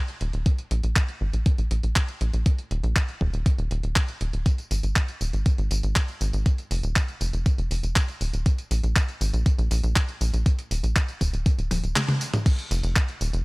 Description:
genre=italo disco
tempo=120 BPM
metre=4/4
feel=straight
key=unclear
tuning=A4 = 439 Hz
part: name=clean 12-bit digital drum machine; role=drums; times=0.1-13.4 s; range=crash cymbal, handclaps, hi-hat, tambourine, toms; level=-28 LUFS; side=equal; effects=overdrive
part: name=tight sequencer bass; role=bass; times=0.2-13.4 s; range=Eb1 to Bb1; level=-24 LUFS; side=equal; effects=none
part: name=electronic kick drum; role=drums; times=0.5-13.1 s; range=none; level=-21 LUFS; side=equal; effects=overdrive
room=little or no reverb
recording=dry, gritty hardware recording, transformer saturation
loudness=-22 LUFS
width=side -26 dB against mid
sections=0.0-12.5 A section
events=drum fill 11.7-12.5; band accent 12.0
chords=none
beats=| 0.46 0.96 1.46 1.96 | 2.46 2.96 3.46 3.96 | 4.46 4.96 5.46 5.96 | 6.46 6.96 7.46 7.96 | 8.46 8.96 9.46 9.96 | 10.46 10.96 11.46 11.96 | 12.46 12.96

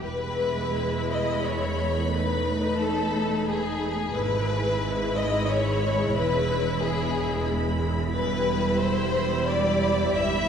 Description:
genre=classical, slow romantic movement for string orchestra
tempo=89 BPM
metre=3/4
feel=rubato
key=E major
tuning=A4 = 439 Hz
part: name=rich studio violin section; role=melody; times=0.0-10.5 s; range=B5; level=-36 LUFS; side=left 4 dB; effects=none
part: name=warm symphonic violin section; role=second line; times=0.0-10.5 s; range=G#4 to E5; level=-27 LUFS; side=left 2 dB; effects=none
part: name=warm symphonic viola section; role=accompaniment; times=0.0-10.5 s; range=G3 to E4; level=-29 LUFS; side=equal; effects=none
part: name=clear symphonic cello section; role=bass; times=0.0-10.5 s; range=E2 to G#2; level=-31 LUFS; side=right 2 dB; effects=none
part: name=rich symphonic double bass section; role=bass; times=0.0-10.5 s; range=E1 to G#1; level=-31 LUFS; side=right 2 dB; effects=none
room=wet cathedral reverb, RT60 6.7 s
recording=recorded in a church or concert hall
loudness=-23 LUFS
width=side -7 dB against mid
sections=0.0-10.5 A section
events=none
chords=0.0 E; 2.1 B7/E; 4.1 E/G#; 6.1 E; 8.1 Em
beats=| 0.04 0.76 1.44 | 2.12 2.81 3.47 | 4.14 4.81 5.48 | 6.13 6.80 7.47 | 8.14 8.80 9.48 | 10.16

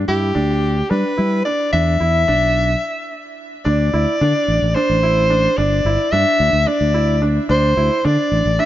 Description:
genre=progressive instrumental, band music in an uneven meter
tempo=219 BPM (eighths)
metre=7/8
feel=straight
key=unclear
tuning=A4 = 440 Hz
part: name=overdriven fingered electric bass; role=bass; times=0.0-8.6 s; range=G1 to G3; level=-18 LUFS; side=equal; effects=none
part: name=breathy soprano saxophone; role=melody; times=0.1-8.7 s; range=G4 to E5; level=-18 LUFS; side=left 1 dB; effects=ping-pong delay
part: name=clear grand piano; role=arpeggios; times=0.1-8.7 s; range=D4 to E4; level=-22 LUFS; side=right 3 dB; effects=ping-pong delay
room=light reverb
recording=nothing above 7.7 kHz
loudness=-14 LUFS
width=side -13 dB against mid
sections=0.0-3.7 A section; 3.7-8.7 B section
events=stop 2.8-3.7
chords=0.0 G; 1.7 E5; 3.7 D5; 5.6 G5; 7.5 D5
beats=0.08 0.36 0.63 0.91 1.18 1.46 | 1.73 2.01 2.28 2.56 2.83 3.11 3.38 | 3.65 3.93 4.20 4.48 4.75 5.03 5.30 | 5.58 5.85 6.12 6.40 6.67 6.95 7.22 | 7.49 7.77 8.04 8.32 8.59

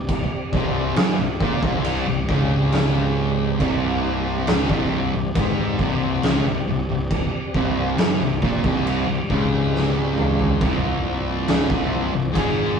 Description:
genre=stoner and doom metal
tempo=68 BPM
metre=4/4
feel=straight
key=unclear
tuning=A4 = 440 Hz
part: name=tonewheel organ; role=sustained chords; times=0.0-12.8 s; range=F3 to D5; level=-31 LUFS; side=equal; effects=slow rotary speaker, overdrive, chorus vibrato
part: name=thick fuzz guitar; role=riff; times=0.0-12.8 s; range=C2 to Bb3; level=-24 LUFS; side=left 4 dB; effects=distortion
part: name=thick fuzz guitar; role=riff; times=0.0-12.8 s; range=C2 to Bb3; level=-24 LUFS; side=right 4 dB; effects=distortion
part: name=fuzz picked electric bass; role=bass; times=0.0-12.8 s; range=C1 to Bb1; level=-28 LUFS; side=equal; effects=overdrive, tube saturation
part: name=oversized low-tuned drum kit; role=drums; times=0.1-12.6 s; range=crash cymbal, kick drum, snare drum, toms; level=-24 LUFS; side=equal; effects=none
room=moderate studio reverb, RT60 0.6 s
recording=rough rehearsal-room recording, cassette tape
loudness=-18 LUFS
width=side -6 dB against mid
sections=0.0-12.8 A section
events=drum fill 9.7-10.6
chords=0.0 C5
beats=| 0.09 0.97 1.85 2.72 | 3.60 4.48 5.36 6.23 | 7.11 7.98 8.86 9.73 | 10.61 11.48 12.36

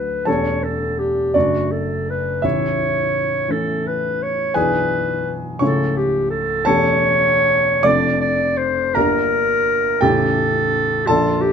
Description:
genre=classical, romantic duo for clarinet and grand piano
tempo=56 BPM (dotted quarters)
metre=6/8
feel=rubato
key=unclear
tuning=A4 = 440 Hz
part: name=warm clarinet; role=melody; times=0.0-11.5 s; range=F4 to D5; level=-18 LUFS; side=equal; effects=none
part: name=warm grand piano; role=accompaniment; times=0.0-11.5 s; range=A0 to D6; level=-19 LUFS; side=equal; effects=none
room=light reverb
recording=none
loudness=-16 LUFS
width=side -7 dB against mid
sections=0.0-11.5 A section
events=none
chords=0.3 A7/E; 1.3 D/F#; 2.4 A; 4.6 E7/B; 5.6 A/C#; 6.7 A7/E; 7.8 Dm/F; 9.0 Gm; 10.0 A7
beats=| 0.27 1.34 | 2.44 3.49 | 4.55 5.61 | 6.67 7.85 | 8.95 10.02 | 11.09

